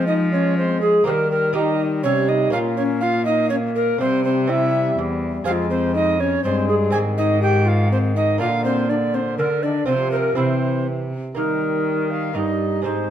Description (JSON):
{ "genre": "classical, renaissance-style consort dance", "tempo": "122 BPM", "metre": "3/4", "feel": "straight", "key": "unclear", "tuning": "A4 = 440 Hz", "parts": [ { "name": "mellow tenor recorder", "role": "melody", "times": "0.0-13.1 s", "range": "C4 to F5", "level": "-23 LUFS", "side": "left 6 dB", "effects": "none" }, { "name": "tenor recorder", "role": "second line", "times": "0.0-13.1 s", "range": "Eb4 to Ab5", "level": "-22 LUFS", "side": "right 3 dB", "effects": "none" }, { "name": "clear trombone", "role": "accompaniment", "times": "0.0-13.1 s", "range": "D3 to Bb3", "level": "-29 LUFS", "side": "left 4 dB", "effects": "none" }, { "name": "lute", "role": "accompaniment", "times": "0.0-13.1 s", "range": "E2 to Ab4", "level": "-27 LUFS", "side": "right 5 dB", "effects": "none" }, { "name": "rich cello", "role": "bass", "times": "0.0-13.1 s", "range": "E2 to F3", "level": "-23 LUFS", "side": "equal", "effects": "none" } ], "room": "moderate stone room reverb, RT60 1.2 s", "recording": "dark, warm production, faint mains hum", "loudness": "-17 LUFS", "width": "side -10 dB against mid", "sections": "0.0-11.4 A section; 11.4-13.1 B section", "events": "none", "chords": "0.0 Fm; 1.1 Eb; 2.5 Bbm; 4.0 C; 5.5 Fm; 6.9 Ab; 8.4 Bb; 9.9 Csus4; 10.4 C; 11.4 Eb" }